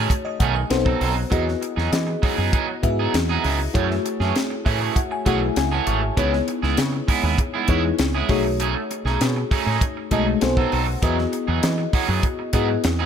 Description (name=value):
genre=polished 1980s jazz-funk pop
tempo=99 BPM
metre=4/4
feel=straight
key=unclear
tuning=A4 = 441 Hz
part: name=bell-like FM electric piano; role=accompaniment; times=0.0-13.1 s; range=G#3 to C#6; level=-24 LUFS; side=left 4 dB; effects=wide subtle chorus
part: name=electric guitar at the edge of break-up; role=riff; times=0.0-13.1 s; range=D#3 to A4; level=-25 LUFS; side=right 8 dB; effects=lush chorus
part: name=woody fretless electric bass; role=bass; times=0.0-13.1 s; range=G#1 to E3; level=-24 LUFS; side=equal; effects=lush chorus
part: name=tight funk drum kit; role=drums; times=0.1-13.0 s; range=hi-hat, kick drum, snare drum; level=-24 LUFS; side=equal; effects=gated reverb
room=light reverb, small room reverb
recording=none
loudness=-19 LUFS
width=side -8 dB against mid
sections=0.0-13.1 A section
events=FM electric piano fill 4.4-6.2, 9.8-11.0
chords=0.0 B13; 0.7 B7b9; 1.3 Emaj9; 3.7 F#m9; 6.2 C#m7; 8.3 B13; 10.4 B7b9; 11.0 Emaj9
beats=0.10 0.71 | 1.32 1.92 2.53 3.14 | 3.75 4.36 4.96 5.57 | 6.18 6.78 7.39 8.00 | 8.60 9.21 9.81 10.42 | 11.03 11.63 12.23 12.84